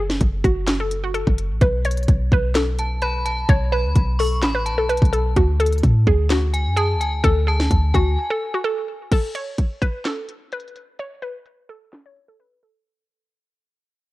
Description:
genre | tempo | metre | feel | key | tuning
hip hop, trap | 128 BPM | 4/4 | half-time | unclear | A4 = 440 Hz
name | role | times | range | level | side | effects
hollow square pluck | melody | 0.0-12.8 s | F#4 to C#5 | -24 LUFS | equal | chorus
clean 808-style bass | bass | 0.0-8.2 s | F#1 to A2 | -20 LUFS | equal | none
trap drum kit | drums | 0.1-12.3 s | crash cymbal, handclaps, hi-hat, kick drum, snare drum | -20 LUFS | equal | none
metallic FM bell | second line | 2.8-8.6 s | G#5 to C#6 | -27 LUFS | left 1 dB | chorus, ping-pong delay
room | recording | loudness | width
little or no reverb | worn, warbling old tape, cassette tape, warbly pitch drift, low-pass filter | -17 LUFS | side -18 dB against mid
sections
0.0-9.1 A section; 9.1-12.9 B section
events
break 8.2-9.1, 12.4-12.9; fade-out 9.1-12.9; filter sweep 9.1-12.9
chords
0.0 F#madd9; 1.6 N.C.; 5.4 D; 9.1 N.C.

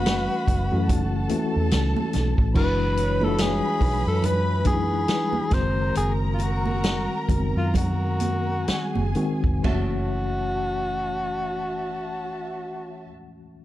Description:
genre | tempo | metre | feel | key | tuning
lush 1970s-style soul | 61-72 BPM | 4/4 | swing 58% on 16ths | F# minor | A4 = 439 Hz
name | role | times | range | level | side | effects
breathy tenor saxophone | melody | 0.0-13.1 s | E#4 to B#4 | -28 LUFS | left 1 dB | none
warm studio string section | second line | 0.0-13.1 s | F#4 to B5 | -34 LUFS | right 2 dB | none
tine electric piano | accompaniment | 0.0-13.6 s | D#3 to F#4 | -28 LUFS | left 3 dB | overdrive, fast stereo tremolo
vintage muted fingered electric bass | bass | 0.0-13.1 s | E#1 to F#2 | -26 LUFS | equal | none
vibraphone with medium mallets | texture | 0.0-13.1 s | C#5 to G#5 | -42 LUFS | right 5 dB | none
vintage drum kit | drums | 0.1-9.9 s | china cymbal, crash cymbal, hi-hat, kick drum, snare drum, toms | -25 LUFS | equal | none
congas | percussion | 0.5-10.1 s | none | -33 LUFS | right 5 dB | none
room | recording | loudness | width
small room reverb | dark, warm production | -21 LUFS | side -14 dB against mid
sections
0.0-2.6 A section; 2.6-9.6 B section; 9.6-13.6 C section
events
slowing down 2.6-9.6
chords
0.0 F#m7; 2.6 E9/F#; 5.5 G#7/F#; 9.6 F#m7

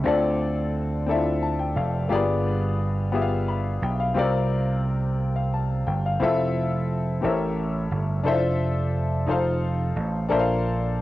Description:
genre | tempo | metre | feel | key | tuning
slow gospel | 59 BPM (dotted quarters) | 6/8 | straight | F major | A4 = 440 Hz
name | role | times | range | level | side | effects
clear grand piano | accompaniment | 0.0-11.0 s | G2 to B5 | -25 LUFS | left 3 dB | cassette tape
vintage slap bass | bass | 0.0-11.0 s | F1 to D2 | -25 LUFS | right 2 dB | none
room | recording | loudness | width
moderate studio reverb, RT60 0.5 s | home recording on cassette | -22 LUFS | side -16 dB against mid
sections
0.0-11.0 A section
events
grand piano fill 1.1-2.1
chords
0.1 Dm7; 2.1 G7b9; 4.2 C9sus4; 6.2 Fmaj7; 7.2 A7b9; 8.3 Dm9/F; 9.3 F7; 10.3 Bbmaj9

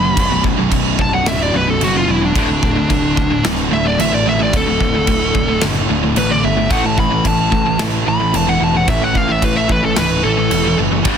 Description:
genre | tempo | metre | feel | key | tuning
heavy metal | 110 BPM | 4/4 | straight | unclear | A4 = 440 Hz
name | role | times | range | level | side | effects
high-gain lead guitar | melody | 0.0-10.8 s | D4 to B5 | -18 LUFS | left 1 dB | distortion, digital delay
cranked stack guitar | riff | 0.0-11.2 s | B1 to A3 | -21 LUFS | equal | overdrive
distorted electric guitar | riff | 0.0-11.2 s | B1 to A3 | -23 LUFS | left 10 dB | overdrive
distorted electric guitar | riff | 0.0-11.2 s | B1 to A3 | -22 LUFS | right 13 dB | overdrive
fuzz picked electric bass | bass | 0.0-11.2 s | B0 to A1 | -21 LUFS | equal | overdrive
big rock drum kit | drums | 0.2-11.2 s | crash cymbal, kick drum, snare drum | -20 LUFS | right 1 dB | none
room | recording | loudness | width
little or no reverb | dense, heavily limited modern master | -13 LUFS | side -7 dB against mid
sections
0.0-11.2 A section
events
lead electric guitar solo 0.0-11.2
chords
0.0 B5; 2.4 D5; 6.7 A5

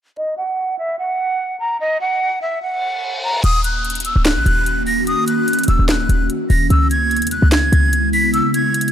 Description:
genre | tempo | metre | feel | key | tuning
hip hop, trap | 147 BPM | 4/4 | half-time | Eb phrygian | A4 = 440 Hz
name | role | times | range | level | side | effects
breathy jazz flute | melody | 0.2-8.9 s | Eb5 to Cb7 | -19 LUFS | right 1 dB | low-pass filter
reverse cymbal and downlifter | sound effects | 2.8-6.7 s | none | -29 LUFS | left 1 dB | none
ethereal airy pad | sustained chords | 3.9-8.9 s | Db3 to Gb4 | -20 LUFS | equal | ensemble chorus, built-in reverb
short 808-style bass | bass | 3.4-8.4 s | Db1 to Fb2 | -16 LUFS | equal | none
trap drum kit | drums | 3.4-8.9 s | crash cymbal, handclaps, hi-hat, snare drum | -22 LUFS | equal | none
room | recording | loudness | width
digital ambience | dark, warm production | -15 LUFS | side -10 dB against mid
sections
0.2-3.4 A section; 3.4-8.9 B section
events
filter sweep on flute 0.2-3.4; reverse cymbal 2.8-3.4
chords
0.2 N.C.; 3.4 Ebm7; 6.7 Dbm7

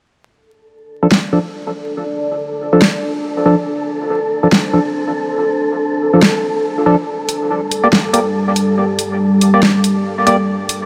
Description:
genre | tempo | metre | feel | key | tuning
deep dubstep | 141 BPM | 4/4 | swing 58% on 16ths, half-time | unclear | A4 = 439 Hz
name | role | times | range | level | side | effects
deep dark ambient pad | sustained chords | 1.6-10.9 s | G3 to D5 | -20 LUFS | equal | chorus, built-in reverb
wind-like tuned noise texture | texture | 1.6-10.9 s | A4 | -24 LUFS | equal | built-in reverb
percussive organ stab | stabs | 1.0-10.4 s | F3 to D5 | -19 LUFS | equal | subtle chorus, dub echo
deep house drum kit | drums | 1.1-10.8 s | hi-hat, snare drum | -17 LUFS | equal | overdrive, small room ambience
room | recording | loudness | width
moderate huge ambient reverb, RT60 8.3 s | vinyl crackle | -15 LUFS | mono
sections
0.3-10.9 A section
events
filter sweep on synth stab 0.3-10.9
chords
0.3 Dm; 7.1 Gm

